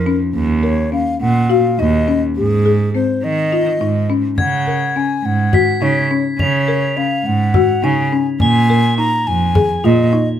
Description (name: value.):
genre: contemporary instrumental, chamber music in an uneven meter.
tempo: 208 BPM (eighths).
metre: 7/8.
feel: straight.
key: unclear.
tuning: A4 = 440 Hz.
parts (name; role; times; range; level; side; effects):
mellow baroque flute; melody; 0.0-10.3 s; Ab4 to Bb5; -20 LUFS; left 2 dB; none.
rich cello; bass; 0.0-10.1 s; Eb2 to Eb3; -16 LUFS; right 3 dB; none.
folk marimba with medium mallets; arpeggios; 0.1-10.3 s; C4 to Bb4; -19 LUFS; left 6 dB; none.
frame drum; percussion; 4.4-10.0 s; none; -19 LUFS; equal; none.
crotales; texture; 4.4-10.4 s; Ab6 to Ab7; -23 LUFS; left 1 dB; none.
room: light reverb.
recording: none.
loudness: -13 LUFS.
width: side -10 dB against mid.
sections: 0.0-4.4 A section; 4.4-10.4 B section.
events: none.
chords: 0.3 Eb7(no3); 2.4 Ab; 4.4 Db7sus4; 8.4 Bb7sus4.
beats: 0.06 | 0.35 0.64 0.92 1.21 1.50 1.79 2.08 | 2.36 2.65 2.94 3.23 3.52 3.80 4.09 | 4.38 4.67 4.96 5.24 5.53 5.82 6.11 | 6.39 6.68 6.97 7.26 7.54 7.83 8.12 | 8.41 8.70 8.98 9.27 9.56 9.85 10.13.